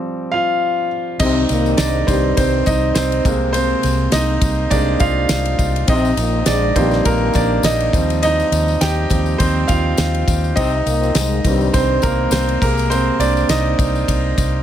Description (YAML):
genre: piano-driven pop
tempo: 102 BPM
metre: 4/4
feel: swing 56% on 16ths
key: Eb major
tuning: A4 = 439 Hz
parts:
  - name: clear grand piano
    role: accompaniment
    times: 0.0-14.6 s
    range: C3 to G5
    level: -18 LUFS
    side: right 2 dB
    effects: none
  - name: dark French horn section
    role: second line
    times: 1.2-12.0 s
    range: G2 to C4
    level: -23 LUFS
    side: left 5 dB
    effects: dub echo
  - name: vintage muted fingered electric bass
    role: bass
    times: 1.2-14.6 s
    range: Bb1 to Eb2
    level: -20 LUFS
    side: equal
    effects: none
  - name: damped 70s drum kit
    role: drums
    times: 1.2-14.5 s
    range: crash cymbal, kick drum, ride cymbal, snare drum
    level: -21 LUFS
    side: equal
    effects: none
  - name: tambourine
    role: percussion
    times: 1.2-14.5 s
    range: none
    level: -32 LUFS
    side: left 8 dB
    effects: none
room: light reverb, small room ambience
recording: echo-heavy mix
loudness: -14 LUFS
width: side -10 dB against mid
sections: 0.0-1.2 A section; 1.2-14.6 B section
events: break 0.0-1.2; grand piano solo 0.0-1.2, 1.2-14.6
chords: 0.0 Eb6 (rootless); 1.2 Cm; 3.3 Abadd9/C; 5.9 Bbsus4; 7.9 Eb6; 10.6 Cm; 12.6 Abadd9/C